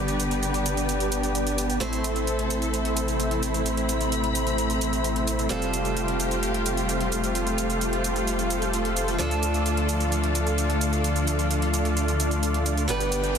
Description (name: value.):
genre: EDM, festival progressive house.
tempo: 130 BPM.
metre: 4/4.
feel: straight.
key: unclear.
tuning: A4 = 437 Hz.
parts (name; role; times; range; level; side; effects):
picked old ladder-braced acoustic guitar; accompaniment; 0.0-13.4 s; F3 to C5; -34 LUFS; right 4 dB; digital delay.
warm symphonic string section; sustained chords; 0.0-13.4 s; C3 to B5; -31 LUFS; left 3 dB; none.
dense compressed supersaw; riff; 0.0-13.4 s; A3 to G5; -26 LUFS; equal; low-pass filter, digital delay.
saturated sub bass; bass; 0.0-13.4 s; F1 to D2; -28 LUFS; equal; none.
electronic hi-hat and cabasa; drums; 0.1-13.4 s; none; -32 LUFS; right 3 dB; overdrive.
riser; sound effects; 13.1-13.4 s; none; -35 LUFS; equal; none.
room: light reverb.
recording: dense, heavily limited modern master.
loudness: -22 LUFS.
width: side -7 dB against mid.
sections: 0.0-13.4 A section.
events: riser 13.1.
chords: 0.0 G; 1.8 Am; 5.5 Fadd9; 9.2 Dm.